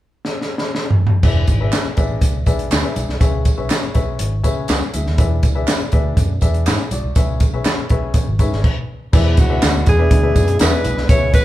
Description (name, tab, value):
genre	uptempo 1960s-style soul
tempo	122 BPM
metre	4/4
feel	straight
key	E mixolydian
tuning	A4 = 439 Hz
part	compact cocktail drum kit	drums	0.2-11.4 s	crash cymbal, hi-hat, kick drum, snare drum, toms	-16 LUFS	equal	none
part	clear upright piano	accompaniment	1.2-11.4 s	C#3 to G#5	-25 LUFS	left 4 dB	none
part	vintage muted fingered electric bass	bass	1.2-11.4 s	E1 to C#3	-20 LUFS	equal	none
part	tambourine and handclaps	percussion	1.2-11.4 s	none	-28 LUFS	right 5 dB	none
part	congas	percussion	1.7-11.2 s	none	-33 LUFS	right 1 dB	none
part	tonewheel organ	sustained chords	9.1-11.4 s	G#3 to E4	-27 LUFS	equal	slow rotary speaker
part	breathy alto saxophone	melody	9.4-11.4 s	F#4 to C#5	-19 LUFS	equal	none
room	moderate large studio reverb, RT60 1.4 s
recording	band playing live in one room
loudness	-14 LUFS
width	side -14 dB against mid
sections	0.0-1.2 A section; 1.2-9.1 B section; 9.1-11.4 C section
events	drum fill 0.2-1.2; stop 8.6-9.1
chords	0.0 N.C.; 1.2 E7; 3.2 C#m7; 5.2 E7; 7.2 C#m7; 9.1 E7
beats	0.24 0.74 | 1.23 1.73 2.22 2.71 | 3.21 3.70 4.20 4.69 | 5.19 5.68 6.17 6.67 | 7.16 7.66 8.15 8.64 | 9.13 9.62 10.11 10.60 | 11.09